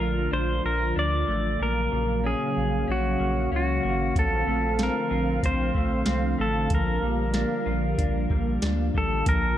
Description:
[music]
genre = dream pop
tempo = 94 BPM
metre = 4/4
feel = straight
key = unclear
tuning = A4 = 440 Hz
[part]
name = pedal steel guitar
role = melody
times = 0.0-9.6 s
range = Gb4 to D5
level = -28 LUFS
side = right 1 dB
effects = tape echo
[part]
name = warm analog pad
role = sustained chords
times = 0.0-9.6 s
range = Bb2 to F5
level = -29 LUFS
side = right 1 dB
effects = chorus
[part]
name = electric guitar through a small old amp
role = arpeggios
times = 0.0-9.6 s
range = Bb2 to F4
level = -31 LUFS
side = left 4 dB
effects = wide subtle chorus, tape echo
[part]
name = warm sub bass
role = bass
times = 0.0-9.5 s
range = Ab1 to D2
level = -28 LUFS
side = equal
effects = none
[part]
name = soft vintage rhythm box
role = drums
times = 4.2-9.4 s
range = hi-hat, kick drum, snare drum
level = -27 LUFS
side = equal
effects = overdrive
[sound]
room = light reverb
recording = none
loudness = -22 LUFS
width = side -11 dB against mid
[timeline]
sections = 0.0-9.3 A section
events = none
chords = 0.0 Bbmaj7; 1.6 Gbmaj7/Bb; 4.2 Dm7/Bb; 6.7 Gm7/Bb

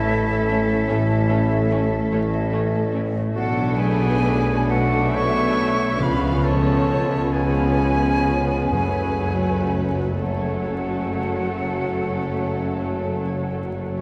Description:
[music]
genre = classical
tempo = 42-49 BPM (dotted quarters)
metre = 12/8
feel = rubato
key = F# minor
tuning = A4 = 438 Hz
[part]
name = bright silver concert flute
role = second line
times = 0.0-13.9 s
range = E5 to C#6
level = -30 LUFS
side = equal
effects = none
[part]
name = clear clarinet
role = second line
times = 0.0-13.9 s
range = E4 to C#5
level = -33 LUFS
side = equal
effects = none
[part]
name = clear studio violin section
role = second line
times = 0.0-14.0 s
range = A4 to E#5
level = -34 LUFS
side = equal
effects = none
[part]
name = warm French horn section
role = sustained chords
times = 0.0-14.0 s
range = A3 to D4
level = -32 LUFS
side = equal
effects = none
[part]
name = concert harp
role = arpeggios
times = 0.0-14.0 s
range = F#2 to E#5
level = -32 LUFS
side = equal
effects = none
[part]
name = clear tuba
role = bass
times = 0.0-14.0 s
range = F#1 to C#2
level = -31 LUFS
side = equal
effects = none
[part]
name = rich studio cello section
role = bass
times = 0.0-14.0 s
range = F#2 to C#3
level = -30 LUFS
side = equal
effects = none
[part]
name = rich studio double bass section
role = bass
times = 0.0-14.0 s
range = F#1 to C#2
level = -30 LUFS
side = equal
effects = none
[part]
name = warm studio violin section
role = melody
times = 0.1-14.0 s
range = C#4 to D4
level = -35 LUFS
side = equal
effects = none
[part]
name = rich studio viola section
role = accompaniment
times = 0.1-14.0 s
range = E#3 to C#4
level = -30 LUFS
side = equal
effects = none
[part]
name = timpani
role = percussion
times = 6.0-10.1 s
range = F#2 to C#3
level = -34 LUFS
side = equal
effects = none
[sound]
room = wet cathedral reverb, RT60 5.5 s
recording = recorded in a church or concert hall, vinyl crackle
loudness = -21 LUFS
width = mono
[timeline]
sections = 0.0-14.0 A section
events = none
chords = 0.0 A; 3.4 Bm7; 6.0 C#7; 8.7 F#m

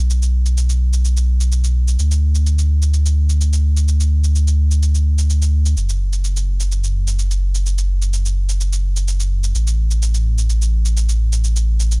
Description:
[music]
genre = melodic techno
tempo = 127 BPM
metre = 4/4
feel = straight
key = B minor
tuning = A4 = 440 Hz
[part]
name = dark detuned saw bass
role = bass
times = 0.0-12.0 s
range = F#1 to D2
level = -14 LUFS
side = equal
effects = none
[part]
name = shaker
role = drums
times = 0.1-12.0 s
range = none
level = -28 LUFS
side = right 2 dB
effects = none
[sound]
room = little or no reverb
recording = dry, gritty hardware recording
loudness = -14 LUFS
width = side -36 dB against mid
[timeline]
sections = 0.0-12.0 A section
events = none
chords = none

